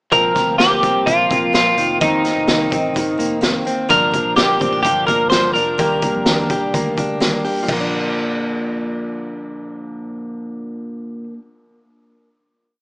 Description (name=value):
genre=jangly indie pop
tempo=127 BPM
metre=4/4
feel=straight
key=Bb major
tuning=A4 = 441 Hz
part: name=twelve-string electric guitar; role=melody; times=0.1-7.2 s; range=Eb4 to C5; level=-15 LUFS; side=equal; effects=none
part: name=picked steel-string acoustic guitar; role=accompaniment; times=0.1-11.4 s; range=F2 to D4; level=-25 LUFS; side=equal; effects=none
part: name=direct-recorded clean electric guitar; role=arpeggios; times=0.1-11.4 s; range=Eb3 to G4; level=-23 LUFS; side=equal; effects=analog delay
part: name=vintage muted picked electric bass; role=bass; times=0.1-11.3 s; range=F1 to F2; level=-31 LUFS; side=equal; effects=none
part: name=raw garage drum kit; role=drums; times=0.1-7.8 s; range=crash cymbal, hi-hat, kick drum, snare drum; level=-21 LUFS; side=equal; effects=none
room=light reverb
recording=rough home demo mix, small speaker sound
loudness=-14 LUFS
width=side -32 dB against mid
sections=0.1-7.7 verse; 7.7-11.5 final chord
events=none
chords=0.1 Bbsus2; 1.8 F7sus4; 3.9 Gm7; 5.8 Ebmaj7; 7.7 Bb